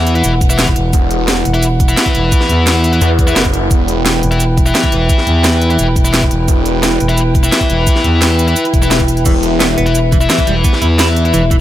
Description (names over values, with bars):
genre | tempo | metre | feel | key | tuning
dark technical drum and bass | 173 BPM | 4/4 | straight | E minor | A4 = 440 Hz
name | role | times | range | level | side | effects
dark analog pad | sustained chords | 0.0-11.6 s | E4 to G5 | -18 LUFS | equal | chorus, sidechain pumping
tight distorted guitar | stabs | 0.0-11.4 s | E4 to E5 | -18 LUFS | left 3 dB | distortion, tape echo
growling FM bass | bass | 0.0-11.6 s | E1 to E2 | -14 LUFS | equal | none
drum and bass drum kit | drums | 0.1-11.6 s | cabasa, crash cymbal, hi-hat, snare drum | -17 LUFS | right 1 dB | none
electronic kick drum | drums | 0.4-11.6 s | none | -13 LUFS | equal | none
phased detuned saw bass | bass | 0.9-4.2, 6.5-7.0, 9.3-9.8 s | E1 to E2 | -15 LUFS | equal | phaser, sidechain pumping
swell | sound effects | 8.7-9.3 s | none | -24 LUFS | left 3 dB | none
electric guitar at the edge of break-up | arpeggios | 9.3-11.6 s | E3 to E4 | -20 LUFS | right 4 dB | sidechain pumping, tape echo
room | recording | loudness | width
little or no reverb | none | -10 LUFS | side -13 dB against mid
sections
0.0-11.6 A section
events
swell 8.7-9.3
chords
0.0 Em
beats
0.24 0.59 | 0.93 1.28 1.63 1.97 | 2.32 2.67 3.01 3.36 | 3.71 4.05 4.40 4.75 | 5.09 5.44 5.79 6.13 | 6.48 6.83 7.18 7.52 | 7.87 8.22 8.56 8.91 | 9.26 9.60 9.95 10.30 | 10.64 10.99 11.34